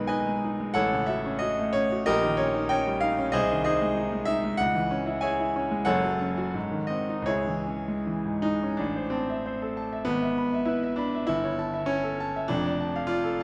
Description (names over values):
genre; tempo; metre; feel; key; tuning
classical, romantic character piece for solo piano; 77-100 BPM; 2/4; rubato; C# minor, A minor from 8.8 s; A4 = 437 Hz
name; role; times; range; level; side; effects
clear concert grand piano; solo; 0.0-13.4 s; F1 to B5; -27 LUFS; equal; none
room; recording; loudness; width
wet concert hall reverb, RT60 2.4 s; none; -27 LUFS; mono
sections
0.0-8.8 A section; 8.8-13.4 B section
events
none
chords
0.0 G#m/B; 0.8 F#m/A; 2.1 D#7/A#; 3.3 G#/B#; 4.6 C#m; 5.9 F#m; 6.6 G#7b9; 7.3 C#m; 8.8 Am; 10.1 E/G#; 11.3 A7/G; 12.5 Dm/F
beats
0.11 | 0.78 1.42 | 2.07 2.71 | 3.34 3.98 | 4.59 5.23 | 5.88 6.55 | 7.29 8.06 | 8.79 9.45 | 10.06 10.68 | 11.29 11.90 | 12.50 13.11